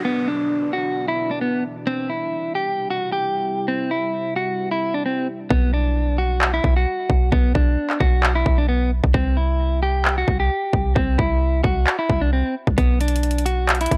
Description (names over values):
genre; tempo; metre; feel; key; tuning
hip hop, trap; 132 BPM; 4/4; half-time; B phrygian; A4 = 440 Hz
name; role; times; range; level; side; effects
clean electric guitar; melody; 0.0-14.0 s; B3 to G4; -25 LUFS; equal; vibrato effect
deep dark ambient pad; sustained chords; 0.0-5.5 s; B2 to E4; -33 LUFS; equal; chorus, built-in reverb
downlifter; sound effects; 0.0-1.9 s; none; -40 LUFS; equal; none
warm 808-style bass; bass; 5.5-14.0 s; B1 to C2; -22 LUFS; equal; none
trap drum kit; drums; 5.5-14.0 s; handclaps, hi-hat, kick drum; -23 LUFS; equal; none
room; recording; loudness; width
little or no reverb; dry, gritty hardware recording, transformer saturation; -21 LUFS; mono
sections
0.0-5.5 A section; 5.5-14.0 B section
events
hi-hats muted 5.5-12.8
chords
0.0 Bm; 1.9 C; 5.5 Bm; 9.1 C; 12.8 Bm